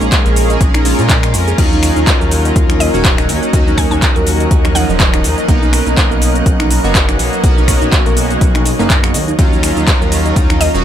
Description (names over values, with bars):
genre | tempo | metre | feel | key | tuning
deep house | 123 BPM | 4/4 | swing 56% on 16ths | Eb minor | A4 = 437 Hz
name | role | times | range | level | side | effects
soft string machine | sustained chords | 0.0-10.8 s | F#3 to Ab5 | -23 LUFS | left 1 dB | ensemble chorus, sidechain pumping
soft round pluck | arpeggios | 0.0-10.8 s | A#3 to Eb5 | -24 LUFS | right 2 dB | chorus, sidechain pumping, ping-pong delay
chorused polysynth | stabs | 0.0-10.8 s | F3 to Ab4 | -18 LUFS | right 2 dB | sidechain pumping, ping-pong delay
smooth gliding synth bass | bass | 0.0-10.8 s | Eb1 to Bb2 | -17 LUFS | equal | sidechain pumping
deep house drum kit | drums | 0.0-10.8 s | crash cymbal, finger snaps, handclaps, hi-hat, ride cymbal, shaker | -18 LUFS | equal | overdrive
granular cloud pad | texture | 0.0-10.8 s | Eb4 to Db6 | -25 LUFS | left 1 dB | built-in reverb, sidechain pumping
electronic kick drum | drums | 0.1-10.5 s | none | -13 LUFS | equal | overdrive
warm studio violin section | texture | 1.6-10.8 s | Eb5 to Bb6 | -28 LUFS | equal | none
mallet-like synth pluck | melody | 2.8-5.2, 10.6-10.8 s | Eb5 to Ab5 | -21 LUFS | left 1 dB | analog chorus, ping-pong delay
room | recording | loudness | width
little or no reverb | none | -10 LUFS | side -10 dB against mid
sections
0.0-10.8 A section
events
none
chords
0.0 Bbm7; 1.6 Ebm9; 5.5 Bmaj9; 9.1 Ebm9